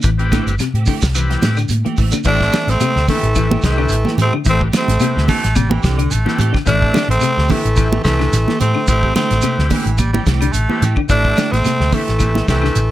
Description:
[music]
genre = afrobeat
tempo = 109 BPM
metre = 4/4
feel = swing 54% on 16ths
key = A minor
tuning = A4 = 435 Hz
[part]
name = overdriven combo organ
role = accompaniment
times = 0.0-12.8 s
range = C4 to B4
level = -27 LUFS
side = left 4 dB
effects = plate reverb
[part]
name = electric guitar at the edge of break-up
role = arpeggios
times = 0.0-12.8 s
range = C3 to E3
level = -23 LUFS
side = left 8 dB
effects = ensemble chorus
[part]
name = fingered electric bass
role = bass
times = 0.0-12.9 s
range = G1 to A2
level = -17 LUFS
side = equal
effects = none
[part]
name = damped 70s drum kit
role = drums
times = 0.0-12.9 s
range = crash cymbal, hi-hat, kick drum, snare drum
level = -20 LUFS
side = equal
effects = none
[part]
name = shekere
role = percussion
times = 0.0-12.9 s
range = none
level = -25 LUFS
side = right 4 dB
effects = none
[part]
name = congas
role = percussion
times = 0.1-12.5 s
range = none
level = -20 LUFS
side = right 4 dB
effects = none
[part]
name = clean electric guitar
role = stabs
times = 0.2-12.7 s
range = E3 to G4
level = -27 LUFS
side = right 7 dB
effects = ensemble chorus
[part]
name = claves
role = percussion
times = 0.3-12.7 s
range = none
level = -33 LUFS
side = left 7 dB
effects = none
[part]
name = growling tenor saxophone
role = melody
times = 2.3-12.9 s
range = A3 to D4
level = -18 LUFS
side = equal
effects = none
[part]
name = clear trombone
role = second line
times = 2.3-12.9 s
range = E3 to A3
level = -25 LUFS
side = right 4 dB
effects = none
[part]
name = raspy baritone saxophone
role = second line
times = 5.3-11.0 s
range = D3 to A3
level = -23 LUFS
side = right 3 dB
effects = plate reverb
[sound]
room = light reverb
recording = none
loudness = -13 LUFS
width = side -14 dB against mid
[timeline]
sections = 0.0-2.3 A section; 2.3-12.9 B section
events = none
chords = 0.0 Am7

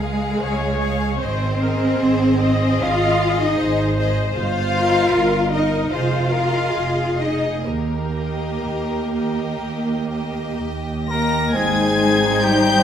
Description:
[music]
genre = classical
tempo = 61-80 BPM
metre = 4/4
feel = rubato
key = unclear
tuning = A4 = 441 Hz
[part]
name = rich studio violin section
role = melody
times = 0.0-12.8 s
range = Ab4 to Bb6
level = -26 LUFS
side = left 4 dB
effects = none
[part]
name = clear studio violin section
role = second line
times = 0.0-12.8 s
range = G4 to Bb5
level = -28 LUFS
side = left 2 dB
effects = none
[part]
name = rich studio viola section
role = accompaniment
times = 0.0-12.8 s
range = Eb4 to Eb5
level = -26 LUFS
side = left 1 dB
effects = none
[part]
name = clear studio double bass section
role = bass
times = 0.0-12.8 s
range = F1 to Eb2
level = -24 LUFS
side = right 3 dB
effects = none
[part]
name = rich studio cello section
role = bass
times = 0.0-12.8 s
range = G3 to F4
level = -22 LUFS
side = equal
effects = none
[part]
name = bright oboe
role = second line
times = 11.1-12.8 s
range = G4 to Bb4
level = -26 LUFS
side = right 1 dB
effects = none
[part]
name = mellow hollow wooden flute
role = second line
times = 11.1-12.8 s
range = G5 to C6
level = -26 LUFS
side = left 2 dB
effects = none
[part]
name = mellow French horn section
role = sustained chords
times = 11.1-12.8 s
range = G3 to Bb3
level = -22 LUFS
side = left 4 dB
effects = none
[part]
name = clear clarinet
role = second line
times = 11.5-12.8 s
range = Eb4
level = -24 LUFS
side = left 2 dB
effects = none
[part]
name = mellow bassoon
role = accompaniment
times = 11.5-12.8 s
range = C4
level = -23 LUFS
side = right 2 dB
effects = none
[sound]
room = moderate recital hall reverb, RT60 1.7 s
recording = none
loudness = -17 LUFS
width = side -9 dB against mid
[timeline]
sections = 0.0-11.5 A section; 11.5-12.8 B section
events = none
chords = 0.0 Db; 1.2 Ab; 4.4 Eb/G; 5.9 Fm7; 7.7 Eb; 11.5 Ab

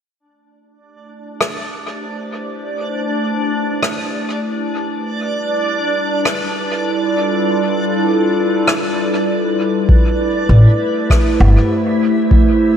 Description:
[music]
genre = ambient dub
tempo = 99 BPM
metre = 4/4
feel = swing 54% on 16ths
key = A minor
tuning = A4 = 440 Hz
[part]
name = warbly tape-like pad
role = sustained chords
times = 1.2-12.8 s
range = G3 to C5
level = -18 LUFS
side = equal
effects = chorus, built-in reverb, phaser
[part]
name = backwards swelling texture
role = texture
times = 1.3-12.8 s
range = D4 to E5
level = -22 LUFS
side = right 1 dB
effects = built-in reverb, wide subtle chorus
[part]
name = rim click and woodblock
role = drums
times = 1.4-11.5 s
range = none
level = -21 LUFS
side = left 1 dB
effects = dub echo
[part]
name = electronic kick drum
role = drums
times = 9.9-12.4 s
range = none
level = -12 LUFS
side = equal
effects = none
[part]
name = upright bass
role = bass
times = 10.5-11.5 s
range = G1 to A1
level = -9 LUFS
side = equal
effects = none
[sound]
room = moderate lush hall reverb, RT60 2.2 s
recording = dreamy mix soaked in reverb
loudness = -14 LUFS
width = side -9 dB against mid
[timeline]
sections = 0.2-9.9 A section; 9.9-12.8 B section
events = fade-in on ambient pad 0.2-9.9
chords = 0.2 Am9; 5.0 G13; 9.9 Am9

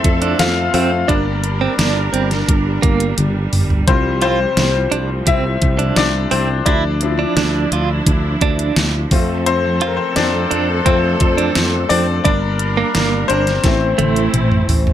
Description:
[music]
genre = piano-driven pop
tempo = 86 BPM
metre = 4/4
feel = straight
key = unclear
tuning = A4 = 442 Hz
[part]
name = bright upright piano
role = accompaniment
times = 0.0-14.9 s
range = E3 to F5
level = -19 LUFS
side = left 7 dB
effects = none
[part]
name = rich studio string section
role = sustained chords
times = 0.0-14.9 s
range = C3 to Bb4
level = -23 LUFS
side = right 3 dB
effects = none
[part]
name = sustaining fretless electric bass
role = bass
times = 0.0-14.9 s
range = G1 to F2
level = -19 LUFS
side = equal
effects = none
[part]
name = pop drum kit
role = drums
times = 0.0-14.9 s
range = hi-hat, kick drum, snare drum, toms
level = -17 LUFS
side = equal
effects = overdrive
[part]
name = direct-recorded clean electric guitar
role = riff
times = 0.2-14.3 s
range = A3 to F4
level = -20 LUFS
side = right 8 dB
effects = tremolo
[sound]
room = light reverb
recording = none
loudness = -14 LUFS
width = side -11 dB against mid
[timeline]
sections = 0.0-14.9 A section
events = upright piano solo 0.0-14.9; drum fill 3.2-3.9, 13.6-14.9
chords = 0.0 F; 1.1 Gm; 3.9 Csus4; 6.7 Dmadd9; 9.1 F; 12.2 Gm; 13.6 Am

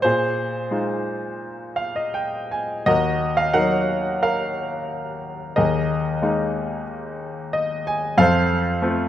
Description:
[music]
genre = classical, lyrical solo piano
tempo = 78-94 BPM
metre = 4/4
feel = rubato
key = unclear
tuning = A4 = 440 Hz
[part]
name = clear grand piano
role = solo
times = 0.0-9.1 s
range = Eb2 to Ab5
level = -20 LUFS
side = equal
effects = none
[sound]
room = moderate scoring stage reverb, RT60 1.5 s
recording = dark, warm production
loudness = -20 LUFS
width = side -11 dB against mid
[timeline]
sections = 0.0-2.9 A section; 2.9-9.1 B section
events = grand piano fill 1.4-2.9, 7.2-8.2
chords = 0.0 Fm7/Bb; 2.9 Ebmadd9; 5.6 Absus2/Eb; 8.2 F

